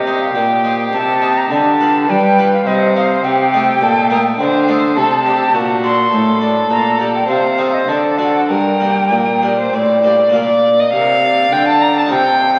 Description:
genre	classical, baroque-style sonata movement with continuo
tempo	103 BPM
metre	3/4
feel	rubato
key	G minor from 3.2 s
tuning	A4 = 440 Hz
part	bright concert flute	melody	0.0-12.6 s	Bb4 to C6	-19 LUFS	equal	none
part	warm violin	second line	0.0-12.6 s	F#4 to Bb5	-18 LUFS	equal	none
part	harpsichord	accompaniment	0.0-12.6 s	G2 to C5	-23 LUFS	equal	none
part	rich cello	bass	0.0-12.6 s	G2 to G3	-21 LUFS	equal	none
room	wet concert hall reverb, RT60 2.2 s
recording	very old 78 rpm record, vinyl crackle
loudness	-14 LUFS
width	mono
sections	0.0-10.3 A section; 10.3-12.6 A section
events	none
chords	0.0 Cm; 1.5 G7/D; 2.7 Cm; 3.2 Am7b5; 5.0 D7; 6.7 Gm/Bb; 7.3 Adim/C; 7.9 D7; 8.5 Gm; 10.3 Bb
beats	0.35 0.93 | 1.52 2.10 2.67 | 3.25 3.82 4.40 | 4.97 5.54 6.12 | 6.70 7.28 7.88 | 8.50 9.12 9.74 | 10.35 10.93 11.53 | 12.11

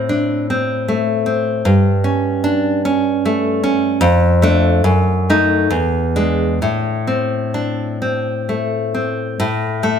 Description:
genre	romantic piece for solo classical guitar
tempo	64-78 BPM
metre	3/4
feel	rubato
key	A minor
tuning	A4 = 439 Hz
part	nylon-string guitar	solo	0.0-10.0 s	E2 to D#4	-14 LUFS	equal	none
room	light reverb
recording	none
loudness	-14 LUFS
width	side -7 dB against mid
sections	0.0-9.4 A section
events	none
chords	0.0 Am; 1.7 A7/G; 4.0 Dm/F; 4.9 F#m6; 5.7 E7; 6.6 Am; 9.4 N.C.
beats	0.07 0.88 | 1.66 2.46 3.25 | 4.02 4.86 5.72 | 6.62 7.55 8.49 | 9.41

